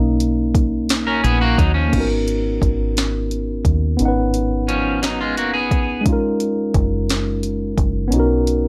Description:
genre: slow six-eight R&B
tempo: 58 BPM (dotted quarters)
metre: 6/8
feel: straight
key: unclear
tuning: A4 = 440 Hz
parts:
  - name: tine electric piano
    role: accompaniment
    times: 0.0-8.7 s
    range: G#3 to F#5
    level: -23 LUFS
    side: equal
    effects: none
  - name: deep dub fingered electric bass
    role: bass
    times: 0.0-8.7 s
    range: F#1 to D#2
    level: -23 LUFS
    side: equal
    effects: none
  - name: smooth R&B drum kit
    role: drums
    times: 0.2-8.6 s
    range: crash cymbal, hi-hat, kick drum, snare drum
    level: -22 LUFS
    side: equal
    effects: overdrive
  - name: electric guitar at the edge of break-up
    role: second line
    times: 1.1-6.0 s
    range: E#3 to A#4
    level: -22 LUFS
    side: equal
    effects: none
room: light reverb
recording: none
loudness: -19 LUFS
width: mono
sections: 0.0-1.9 A section; 1.9-8.7 B section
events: tine electric piano solo 0.0-1.9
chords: 0.0 Bmaj9; 1.9 G#m11; 6.1 F#maj13; 8.1 Bmaj9

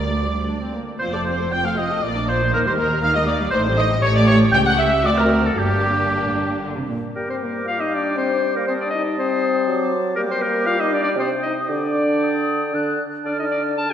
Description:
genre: quick classical-period movement for symphony orchestra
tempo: 117 BPM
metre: 3/4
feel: rubato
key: G minor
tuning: A4 = 441 Hz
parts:
  - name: muted chamber violin section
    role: melody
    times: 0.0-6.6 s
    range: G4 to G5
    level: -28 LUFS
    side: left 2 dB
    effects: none
  - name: muted chamber violin section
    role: second line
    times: 0.0-6.6 s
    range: G4 to G5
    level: -26 LUFS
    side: left 3 dB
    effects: none
  - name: warm oboe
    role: second line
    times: 0.0-13.9 s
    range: G4 to A5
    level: -24 LUFS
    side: right 1 dB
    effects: none
  - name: muted chamber viola section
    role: accompaniment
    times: 0.0-7.0 s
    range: G3 to A4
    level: -25 LUFS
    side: equal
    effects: none
  - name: muted chamber double bass section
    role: bass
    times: 0.0-6.9 s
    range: F1 to Eb2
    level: -25 LUFS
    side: equal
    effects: none
  - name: muted studio cello section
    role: bass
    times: 0.0-7.0 s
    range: C#2 to Eb3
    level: -24 LUFS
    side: right 1 dB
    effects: none
  - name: bright clarinet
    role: second line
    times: 7.1-13.9 s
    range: Bb4 to A5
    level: -23 LUFS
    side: left 3 dB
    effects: none
  - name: mellow hollow small flute group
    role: second line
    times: 7.1-13.9 s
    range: D6 to F#6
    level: -28 LUFS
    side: equal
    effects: none
  - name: mellow bassoon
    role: accompaniment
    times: 7.2-13.9 s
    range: C3 to G3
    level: -25 LUFS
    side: right 1 dB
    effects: none
  - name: warm French horn section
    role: sustained chords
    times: 7.2-13.9 s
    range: Bb3 to A4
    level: -25 LUFS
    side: left 2 dB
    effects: none
room: wet scoring stage reverb, RT60 1.8 s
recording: none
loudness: -18 LUFS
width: side -9 dB against mid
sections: 0.0-7.2 A section; 7.2-13.9 A section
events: none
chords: 0.5 Bbadd9/D; 1.0 F; 2.0 Bbmaj7; 2.5 Eb; 3.5 Am7b5; 4.0 A7; 5.0 D7; 5.6 Gm; 7.2 G5; 8.7 Am7b5/G; 9.7 D7/F#; 10.2 G5; 11.2 Cm; 11.7 G5/D; 13.3 Dm

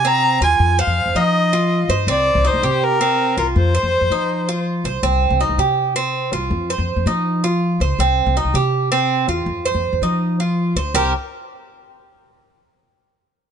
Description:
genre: latin, Cuban son and guajira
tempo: 162 BPM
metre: 4/4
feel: straight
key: C minor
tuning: A4 = 438 Hz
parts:
  - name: warm violin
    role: melody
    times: 0.0-4.6 s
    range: Bb4 to Bb5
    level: -18 LUFS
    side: left 1 dB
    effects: none
  - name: Cuban tres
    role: arpeggios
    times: 0.0-11.1 s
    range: C4 to C5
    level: -20 LUFS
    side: right 3 dB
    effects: none
  - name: upright bass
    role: bass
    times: 0.0-11.1 s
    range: C2 to F3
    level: -20 LUFS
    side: left 1 dB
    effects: none
room: light reverb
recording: nothing above 11.0 kHz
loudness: -16 LUFS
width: side -7 dB against mid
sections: 0.0-5.0 A section; 5.0-10.9 B section; 10.9-12.4 C section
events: none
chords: 0.0 Cm7; 0.6 F5; 2.1 Cm7; 3.6 F5; 5.0 Cm; 6.5 F5; 8.0 Cm; 9.5 F5; 10.9 C5

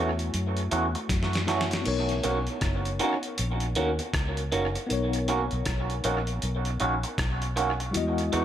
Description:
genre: lovers rock reggae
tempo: 79 BPM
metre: 4/4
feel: swing 62% on 16ths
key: B major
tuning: A4 = 441 Hz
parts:
  - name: tine electric piano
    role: accompaniment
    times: 0.0-8.4 s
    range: G3 to D#5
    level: -33 LUFS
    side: left 4 dB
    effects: overdrive, fast stereo tremolo, tape echo
  - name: electric guitar through a small old amp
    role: stabs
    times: 0.0-8.4 s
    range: D#3 to F#4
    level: -29 LUFS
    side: right 2 dB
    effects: phaser, tape echo
  - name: vintage muted fingered electric bass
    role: bass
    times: 0.0-8.4 s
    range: F#1 to F#2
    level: -30 LUFS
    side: equal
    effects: none
  - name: dusty soul sampler-style drum kit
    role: drums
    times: 0.2-8.4 s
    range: crash cymbal, hi-hat, kick drum, rim click, snare drum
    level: -32 LUFS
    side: equal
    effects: gated reverb, tape echo
room: light reverb, digital ambience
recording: none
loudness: -25 LUFS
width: side -10 dB against mid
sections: 0.0-8.4 A section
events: drum fill 1.1-1.9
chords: 0.0 F#m7; 1.9 Bmaj9; 7.9 Emaj9

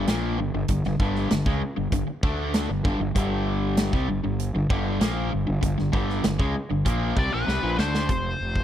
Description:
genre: classic rock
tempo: 97 BPM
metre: 4/4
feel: straight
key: unclear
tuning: A4 = 438 Hz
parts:
  - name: crunchy overdriven guitar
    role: riff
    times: 0.0-8.6 s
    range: F2 to D4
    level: -26 LUFS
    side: equal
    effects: spring reverb
  - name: fuzz fingered electric bass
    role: bass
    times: 0.0-8.6 s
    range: F1 to D2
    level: -28 LUFS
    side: equal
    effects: overdrive
  - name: big rock drum kit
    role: drums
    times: 0.1-8.6 s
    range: hi-hat, kick drum, snare drum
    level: -26 LUFS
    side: equal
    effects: none
  - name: nasal lead guitar with a parked wah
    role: melody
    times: 7.2-8.6 s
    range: B4 to D5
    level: -28 LUFS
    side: left 2 dB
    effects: overdrive
room: little or no reverb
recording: dry, close 1970s-style studio recording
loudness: -22 LUFS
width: side -10 dB against mid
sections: 0.0-8.1 A section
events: drum fill 7.5-8.1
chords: 0.0 G5; 8.1 F5

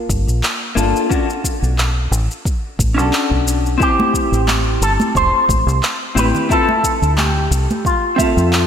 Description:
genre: sunset chillout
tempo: 89 BPM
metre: 4/4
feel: swing 54% on 16ths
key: unclear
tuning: A4 = 440 Hz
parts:
  - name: vintage hollow-body jazz guitar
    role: accompaniment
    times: 0.0-8.7 s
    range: Bb3 to E5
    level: -20 LUFS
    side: moving between left 4 dB and right 4 dB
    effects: auto-pan, diffuse ambient delay
  - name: deep dub fingered electric bass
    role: bass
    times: 0.1-8.6 s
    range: E1 to F2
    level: -17 LUFS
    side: equal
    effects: none
  - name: electronic kick drum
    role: drums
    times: 0.1-8.3 s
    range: none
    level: -21 LUFS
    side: equal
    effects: none
  - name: electronic shaker and handclaps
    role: drums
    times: 0.1-8.7 s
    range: none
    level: -23 LUFS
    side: equal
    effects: none
  - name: electric guitar with an envelope filter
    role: melody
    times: 3.8-8.7 s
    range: F4 to C5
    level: -18 LUFS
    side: equal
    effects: wide subtle chorus, diffuse ambient delay
  - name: congas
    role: percussion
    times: 4.0-8.3 s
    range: none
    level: -24 LUFS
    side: equal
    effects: none
room: wet lush hall reverb, RT60 2.5 s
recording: dreamy mix soaked in reverb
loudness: -14 LUFS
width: side -8 dB against mid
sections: 0.0-8.7 A section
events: none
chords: 0.0 Gm9; 1.1 Bm9; 3.8 Am7; 6.5 Dm9

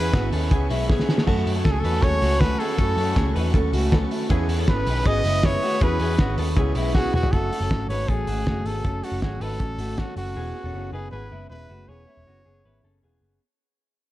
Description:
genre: jangly indie pop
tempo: 158 BPM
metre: 4/4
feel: straight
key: F# dorian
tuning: A4 = 440 Hz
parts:
  - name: brilliant trumpet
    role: melody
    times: 0.0-13.0 s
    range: F#4 to D#5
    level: -28 LUFS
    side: equal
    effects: none
  - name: glockenspiel with soft plastic mallets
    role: second line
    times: 0.0-6.4 s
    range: G#5 to D#6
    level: -37 LUFS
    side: right 3 dB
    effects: none
  - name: electric guitar through a small old amp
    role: accompaniment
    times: 0.0-13.4 s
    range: E3 to B4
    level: -32 LUFS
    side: right 3 dB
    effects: none
  - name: warm upright piano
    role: accompaniment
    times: 0.0-7.3 s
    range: A3 to A5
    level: -32 LUFS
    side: right 3 dB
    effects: none
  - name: clear studio string section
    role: sustained chords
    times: 0.0-7.3 s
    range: A3 to C#6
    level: -37 LUFS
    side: left 1 dB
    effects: none
  - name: clean electric guitar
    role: arpeggios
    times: 0.0-13.4 s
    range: G#3 to B4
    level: -31 LUFS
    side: left 4 dB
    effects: none
  - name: vintage muted picked electric bass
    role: bass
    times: 0.0-13.4 s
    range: E1 to F#2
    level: -26 LUFS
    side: equal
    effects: none
  - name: cloth-damped thuddy drum kit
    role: drums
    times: 0.1-10.3 s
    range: hi-hat, kick drum, ride cymbal, snare drum, splash cymbal, toms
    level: -24 LUFS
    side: equal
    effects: none
room: light reverb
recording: dark, warm production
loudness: -20 LUFS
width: side -15 dB against mid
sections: 0.0-7.3 A section; 7.3-13.4 B section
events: upright piano fill 0.7-1.3, 3.2-4.3, 6.8-7.3; drum fill 0.9-1.3, 6.9-7.3; fade-out 7.3-13.4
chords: 0.0 C#m7; 1.3 F#m; 4.3 C#m7; 7.3 F#m; 10.4 C#m7/E

